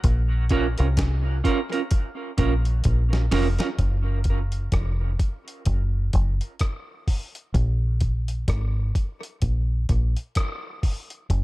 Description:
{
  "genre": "dub reggae",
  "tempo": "64 BPM",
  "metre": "4/4",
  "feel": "swing 59% on 16ths",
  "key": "Bb minor",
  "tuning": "A4 = 441 Hz",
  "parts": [
    { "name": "deep dub fingered electric bass", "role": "bass", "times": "0.0-11.4 s", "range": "F1 to C2", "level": "-22 LUFS", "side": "equal", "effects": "none" },
    { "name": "dusty soul sampler-style drum kit", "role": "drums", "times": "0.0-11.4 s", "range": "hi-hat, kick drum, rim click, snare drum", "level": "-24 LUFS", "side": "equal", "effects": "none" },
    { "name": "clean electric guitar", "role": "accompaniment", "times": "0.5-3.7 s", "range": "Db4 to Bb4", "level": "-28 LUFS", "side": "right 6 dB", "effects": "high-pass filter, low-pass filter, dub echo" }
  ],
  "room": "digital ambience",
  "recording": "echo-heavy mix",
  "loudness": "-22 LUFS",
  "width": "side -18 dB against mid",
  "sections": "0.0-3.8 A section; 3.8-11.4 B section",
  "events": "drum fill 2.9-3.8; break 3.8-11.4",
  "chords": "0.0 Bbm; 3.8 N.C."
}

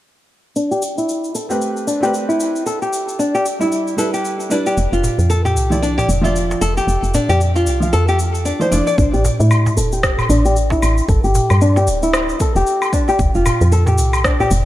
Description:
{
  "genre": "organic downtempo",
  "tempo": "114 BPM",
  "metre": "4/4",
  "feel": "swing 58% on 16ths",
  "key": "unclear",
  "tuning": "A4 = 435 Hz",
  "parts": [
    { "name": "nylon-string guitar", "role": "arpeggios", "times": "0.6-14.5 s", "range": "D4 to D5", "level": "-18 LUFS", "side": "left 1 dB", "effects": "low-pass filter, digital delay" },
    { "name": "electronic cabasa, woodblock and rim click", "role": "drums", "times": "0.6-14.6 s", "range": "none", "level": "-24 LUFS", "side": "left 1 dB", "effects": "none" },
    { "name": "felt-muted upright piano", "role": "accompaniment", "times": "1.5-8.9 s", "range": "F3 to F5", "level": "-23 LUFS", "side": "right 1 dB", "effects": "sidechain pumping, digital delay" },
    { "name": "woody FM bass", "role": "bass", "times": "4.8-14.7 s", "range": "D1 to A2", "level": "-16 LUFS", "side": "equal", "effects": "none" },
    { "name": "darbuka", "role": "percussion", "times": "5.0-14.6 s", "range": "none", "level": "-24 LUFS", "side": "right 2 dB", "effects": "none" },
    { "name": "electronic kick drum", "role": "drums", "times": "9.0-14.4 s", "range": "none", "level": "-18 LUFS", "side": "equal", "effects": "none" }
  ],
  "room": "light reverb, small room ambience",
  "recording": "none",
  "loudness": "-14 LUFS",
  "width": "side -14 dB against mid",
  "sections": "0.6-9.0 A section; 9.0-14.7 B section",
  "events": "filter sweep on nylon-string guitar 0.6-9.0, 9.0-14.7",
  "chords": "0.6 Amadd9; 2.7 G6; 4.8 Dmadd9/F; 9.0 A5; 11.1 G5; 13.2 N.C."
}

